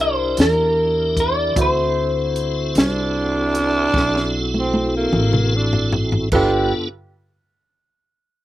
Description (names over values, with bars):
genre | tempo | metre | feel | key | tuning
slow blues | 50 BPM (dotted quarters) | 12/8 | straight | unclear | A4 = 435 Hz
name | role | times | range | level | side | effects
electric guitar through a small old amp | melody | 0.0-6.7 s | G4 to D5 | -20 LUFS | left 1 dB | none
clear upright piano | accompaniment | 0.0-6.7 s | E4 to D5 | -28 LUFS | right 4 dB | none
tonewheel organ | sustained chords | 0.0-6.9 s | B3 to Bb4 | -23 LUFS | equal | slow rotary speaker, chorus vibrato
upright bass | bass | 0.0-6.7 s | G1 to E2 | -23 LUFS | equal | none
compact cocktail drum kit | drums | 0.4-6.5 s | crash cymbal, hi-hat, kick drum, snare drum, toms | -20 LUFS | equal | none
growling tenor saxophone | second line | 2.8-6.7 s | Bb3 to D4 | -22 LUFS | right 2 dB | slapback echo
room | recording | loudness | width
little or no reverb | recorded outdoors, with no room sound | -16 LUFS | side -14 dB against mid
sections
0.0-6.3 A section; 6.3-8.4 B section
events
drum fill 3.9-6.3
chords
0.0 C9; 1.6 D9; 6.3 G9